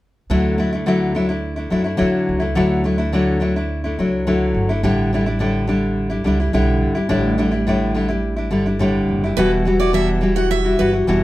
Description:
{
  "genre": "pop",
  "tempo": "106 BPM",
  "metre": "4/4",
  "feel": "straight",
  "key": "D major",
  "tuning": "A4 = 440 Hz",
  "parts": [
    { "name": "nylon-string guitar", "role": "accompaniment", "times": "0.3-11.2 s", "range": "E2 to F#4", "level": "-17 LUFS", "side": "left 1 dB", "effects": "none" },
    { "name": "upright bass", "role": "bass", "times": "0.3-11.2 s", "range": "E1 to F#2", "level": "-22 LUFS", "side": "right 1 dB", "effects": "none" },
    { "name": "picked steel-string acoustic guitar", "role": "arpeggios", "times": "9.4-10.9 s", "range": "B4 to F#5", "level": "-24 LUFS", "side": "right 5 dB", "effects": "none" }
  ],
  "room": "moderate studio reverb, RT60 0.8 s",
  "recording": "heard from further back in the room",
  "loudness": "-16 LUFS",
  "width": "side -16 dB against mid",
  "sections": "0.3-11.2 A section",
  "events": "none",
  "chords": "0.3 Dadd9; 4.8 A7sus4; 9.4 Emadd9"
}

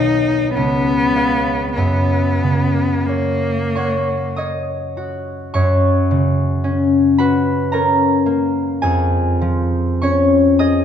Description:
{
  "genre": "classical, romantic duo for cello and harp",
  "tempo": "42-57 BPM",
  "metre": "3/4",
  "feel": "rubato",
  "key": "F# major",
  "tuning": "A4 = 439 Hz",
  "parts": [
    { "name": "rich cello", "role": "melody", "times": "0.0-4.4 s", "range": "A#3 to D#4", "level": "-19 LUFS", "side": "left 2 dB", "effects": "none" },
    { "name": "concert harp", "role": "accompaniment", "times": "0.0-10.8 s", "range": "B1 to D#6", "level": "-15 LUFS", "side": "equal", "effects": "none" }
  ],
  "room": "moderate recital hall reverb, RT60 1.5 s",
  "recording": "dark, warm production",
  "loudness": "-14 LUFS",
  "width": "side -8 dB against mid",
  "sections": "0.0-5.5 A section; 5.5-10.8 A section",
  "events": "none",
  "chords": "0.0 B; 0.6 C#; 1.8 F#; 8.8 C#/E#"
}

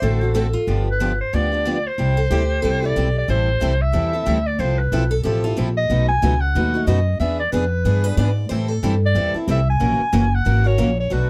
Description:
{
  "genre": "acoustic string swing (jazz manouche)",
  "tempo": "184 BPM",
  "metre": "4/4",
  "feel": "swing 59% on 8ths",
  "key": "C major",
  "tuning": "A4 = 441 Hz",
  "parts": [
    { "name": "bright clarinet", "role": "melody", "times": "0.0-11.3 s", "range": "B4 to G#5", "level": "-25 LUFS", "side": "equal", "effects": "none" },
    { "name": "picked steel-string acoustic guitar", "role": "second line", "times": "0.0-5.7, 7.9-8.9 s", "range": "F4 to D5", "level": "-28 LUFS", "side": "equal", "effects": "none" },
    { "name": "picked steel-string acoustic guitar", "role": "accompaniment", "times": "0.0-11.3 s", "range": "B2 to A#4", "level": "-27 LUFS", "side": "equal", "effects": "none" },
    { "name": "picked steel-string acoustic guitar", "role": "accompaniment", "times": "0.0-11.3 s", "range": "B2 to B4", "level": "-33 LUFS", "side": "equal", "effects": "none" },
    { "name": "upright bass", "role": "bass", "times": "0.0-11.3 s", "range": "F#1 to A2", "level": "-22 LUFS", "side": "equal", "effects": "none" }
  ],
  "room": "little or no reverb",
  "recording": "close, detailed microphones",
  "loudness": "-19 LUFS",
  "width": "mono",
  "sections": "0.0-3.3 A section; 3.3-11.3 B section",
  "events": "none",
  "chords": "0.0 D7; 0.7 G7; 2.0 C; 3.3 Am7; 4.6 Fmaj7; 5.9 B7; 7.2 E7; 8.5 Am7; 9.8 F#7"
}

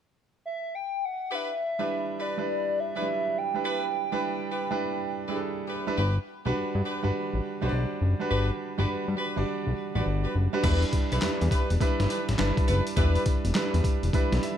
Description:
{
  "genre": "R&B, new jack swing",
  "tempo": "103 BPM",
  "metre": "4/4",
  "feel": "swing 64% on 16ths",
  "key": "E minor",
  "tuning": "A4 = 444 Hz",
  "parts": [
    { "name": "hollow clarinet-like synth lead", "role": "melody", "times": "0.5-5.7 s", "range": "D5 to G5", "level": "-30 LUFS", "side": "right 1 dB", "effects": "chorus, phaser" },
    { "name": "warm horn section", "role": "stabs", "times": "1.3-13.2 s", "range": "D4 to B4", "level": "-35 LUFS", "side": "left 1 dB", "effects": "none" },
    { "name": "clear concert grand piano", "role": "accompaniment", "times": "1.8-14.6 s", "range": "F#3 to E5", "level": "-30 LUFS", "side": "right 2 dB", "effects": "none" },
    { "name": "fat analog bass", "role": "bass", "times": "6.0-14.4 s", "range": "E1 to G2", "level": "-25 LUFS", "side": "left 1 dB", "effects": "none" },
    { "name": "boom bap sampler-style drum kit", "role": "drums", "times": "10.6-14.6 s", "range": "crash cymbal, handclaps, hi-hat, kick drum, snare drum", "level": "-27 LUFS", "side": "left 1 dB", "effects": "overdrive" }
  ],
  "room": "light reverb",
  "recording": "none",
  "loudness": "-25 LUFS",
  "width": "side -9 dB against mid",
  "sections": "0.0-1.3 A section; 1.3-10.6 B section; 10.6-14.6 C section",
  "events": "grand piano fill 14.1-14.6",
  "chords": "0.0 N.C.; 1.3 Em7; 6.0 Gmaj7; 10.6 Em7"
}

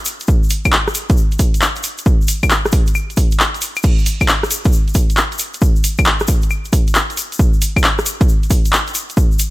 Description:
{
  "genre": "UK garage",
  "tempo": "135 BPM",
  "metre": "4/4",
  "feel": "swing 67% on 16ths",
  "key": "none",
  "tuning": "none",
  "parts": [
    { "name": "punchy analog drum machine", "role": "drums", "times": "0.1-9.5 s", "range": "claves, crash cymbal, handclaps, hi-hat, rim click", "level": "-17 LUFS", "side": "equal", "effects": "none" },
    { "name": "egg shaker", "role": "percussion", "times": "0.1-9.5 s", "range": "none", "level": "-24 LUFS", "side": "left 3 dB", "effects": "none" },
    { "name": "electronic kick drum", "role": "drums", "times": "0.3-9.3 s", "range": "none", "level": "-14 LUFS", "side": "equal", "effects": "none" }
  ],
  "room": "digital ambience",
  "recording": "none",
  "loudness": "-13 LUFS",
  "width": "side -18 dB against mid",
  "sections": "0.0-9.5 A section",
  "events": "none",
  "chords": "none"
}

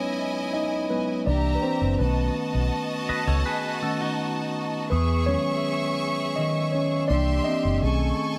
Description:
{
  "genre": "soul",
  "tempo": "82 BPM",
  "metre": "4/4",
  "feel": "straight",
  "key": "E major",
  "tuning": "A4 = 440 Hz",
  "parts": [
    { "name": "bright studio violin section", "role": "second line", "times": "0.0-8.4 s", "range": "E4 to C#6", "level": "-32 LUFS", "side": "equal", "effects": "slapback echo" },
    { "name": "mellow tine electric piano", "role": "accompaniment", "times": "0.0-8.4 s", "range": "D#3 to D#5", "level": "-28 LUFS", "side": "equal", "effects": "none" },
    { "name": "vintage muted fingered electric bass", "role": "bass", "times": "1.3-8.1 s", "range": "F#1 to E2", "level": "-26 LUFS", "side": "equal", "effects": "none" },
    { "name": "twangy electric guitar", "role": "riff", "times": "3.1-4.9 s", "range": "D#4 to D#5", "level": "-33 LUFS", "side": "equal", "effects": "harmonic tremolo" },
    { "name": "large celesta", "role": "texture", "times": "4.9-7.3 s", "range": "D#6", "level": "-42 LUFS", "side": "equal", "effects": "none" }
  ],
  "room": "light reverb",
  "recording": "none",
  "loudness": "-25 LUFS",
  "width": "mono",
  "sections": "0.0-8.4 A section",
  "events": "tine electric piano solo 0.0-8.4",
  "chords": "0.0 Emaj7; 1.3 C9; 2.0 B9; 4.9 Emaj7; 7.1 C9; 7.8 B13"
}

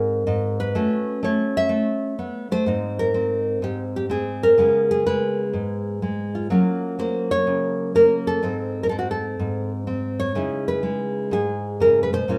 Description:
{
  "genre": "solo jazz",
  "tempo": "125 BPM",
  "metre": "4/4",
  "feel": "swing 68% on 8ths",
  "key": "unclear",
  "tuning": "A4 = 436 Hz",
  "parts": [
    { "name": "nylon-string guitar", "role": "solo", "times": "0.0-12.4 s", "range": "Ab2 to E5", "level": "-22 LUFS", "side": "equal", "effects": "none" }
  ],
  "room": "light reverb",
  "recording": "none",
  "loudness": "-22 LUFS",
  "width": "mono",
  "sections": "0.0-2.7 A section; 2.7-12.4 B section",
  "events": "none",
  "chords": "0.0 Abadd9; 0.7 A69; 2.7 Abadd9; 4.6 Db7(no3); 6.5 Gbmaj7; 8.4 Ab; 10.3 Dbm9"
}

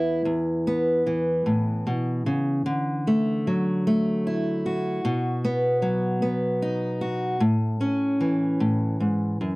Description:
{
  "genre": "folk, solo fingerstyle acoustic guitar",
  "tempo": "50 BPM (dotted quarters)",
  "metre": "6/8",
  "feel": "straight",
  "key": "unclear",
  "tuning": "A4 = 441 Hz",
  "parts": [
    { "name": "fingerpicked steel-string acoustic guitar", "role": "solo", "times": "0.0-9.6 s", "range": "E2 to F#4", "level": "-22 LUFS", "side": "equal", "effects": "none" }
  ],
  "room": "little or no reverb",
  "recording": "dry, close 1970s-style studio recording",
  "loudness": "-22 LUFS",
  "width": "side -24 dB against mid",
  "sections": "0.3-9.6 A section",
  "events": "none",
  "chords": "0.3 E5; 2.7 Dadd9; 5.0 B; 7.4 A"
}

